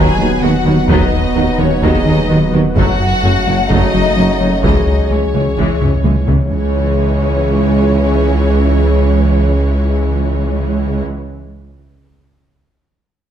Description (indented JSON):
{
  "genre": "cinematic, hybrid orchestral and electronic film score",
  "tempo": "128 BPM",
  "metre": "4/4",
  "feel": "straight",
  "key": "C# minor",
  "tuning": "A4 = 440 Hz",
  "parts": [
    { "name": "rich studio violin section", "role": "melody", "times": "0.0-11.0 s", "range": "C#5 to G#5", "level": "-23 LUFS", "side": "left 3 dB", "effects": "none" },
    { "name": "rich symphonic violin section", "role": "second line", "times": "0.0-11.0 s", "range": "C#4 to G#4", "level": "-24 LUFS", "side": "left 2 dB", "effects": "none" },
    { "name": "clear symphonic viola section", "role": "accompaniment", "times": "0.0-11.0 s", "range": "E3 to B3", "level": "-23 LUFS", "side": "right 2 dB", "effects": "none" },
    { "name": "airy breathy pad", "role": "sustained chords", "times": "0.0-11.0 s", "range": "E3 to C#5", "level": "-21 LUFS", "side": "equal", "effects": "chorus" },
    { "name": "mellow French horn section", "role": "sustained chords", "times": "0.0-11.0 s", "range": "C#4 to G#4", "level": "-24 LUFS", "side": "left 5 dB", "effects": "none" },
    { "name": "warm trombone section", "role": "sustained chords", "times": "0.0-11.0 s", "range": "C#3 to B3", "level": "-24 LUFS", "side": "right 4 dB", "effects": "none" },
    { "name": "round analog bass", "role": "riff", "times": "0.0-6.4 s", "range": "C#2 to F#3", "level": "-18 LUFS", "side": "left 2 dB", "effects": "none" },
    { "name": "bright symphonic double bass section", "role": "bass", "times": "0.0-11.0 s", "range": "F#1 to D#2", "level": "-21 LUFS", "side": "right 3 dB", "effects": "none" },
    { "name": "mellow tuba", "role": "bass", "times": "0.0-11.0 s", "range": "F#1 to D#2", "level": "-21 LUFS", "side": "right 5 dB", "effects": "none" },
    { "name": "punchy sub bass", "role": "bass", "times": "0.0-11.0 s", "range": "D#1 to C#2", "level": "-18 LUFS", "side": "equal", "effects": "none" },
    { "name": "warm symphonic cello section", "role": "bass", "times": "0.0-11.0 s", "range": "C#2 to D#3", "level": "-22 LUFS", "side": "right 2 dB", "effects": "none" },
    { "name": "taiko ensemble", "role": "drums", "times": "0.9-6.5 s", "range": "none", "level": "-20 LUFS", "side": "equal", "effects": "none" }
  ],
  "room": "moderate recital hall reverb, RT60 1.4 s",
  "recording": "none",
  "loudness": "-11 LUFS",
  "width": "side -9 dB against mid",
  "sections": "0.0-6.5 A section; 6.5-10.3 B section",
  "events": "drum fill 5.8-6.5",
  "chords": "0.0 B/D#; 2.8 F#m; 4.6 C#m"
}